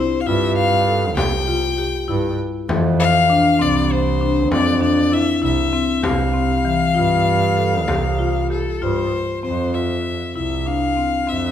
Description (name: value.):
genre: contemporary instrumental, chamber music in an uneven meter.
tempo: 196 BPM (eighths).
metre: 11/8.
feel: straight.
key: F major.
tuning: A4 = 441 Hz.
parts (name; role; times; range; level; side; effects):
clear violin; melody; 0.0-11.5 s; A4 to G5; -21 LUFS; left 4 dB; none.
marimba with medium hard mallets; arpeggios; 0.0-11.5 s; E3 to A4; -20 LUFS; left 4 dB; none.
clear double bass; bass; 0.0-11.5 s; C2 to G2; -22 LUFS; right 5 dB; none.
frame drum; percussion; 0.6-9.3 s; none; -26 LUFS; left 2 dB; none.
room: wet recital hall reverb, RT60 1.6 s.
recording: none.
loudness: -16 LUFS.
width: side -9 dB against mid.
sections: 0.0-9.4 A section; 9.4-11.5 B section.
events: none.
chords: 0.0 Csus4; 2.7 F5; 6.0 Csus4; 9.4 F5.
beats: 0.27 0.57 0.87 1.18 1.48 1.78 2.09 2.39 | 2.69 3.00 3.30 3.60 3.91 4.21 4.51 4.82 5.12 5.42 5.73 | 6.03 6.34 6.65 6.95 7.26 7.57 7.88 8.19 8.50 8.82 9.13 | 9.44 9.74 10.05 10.36 10.66 10.97 11.28.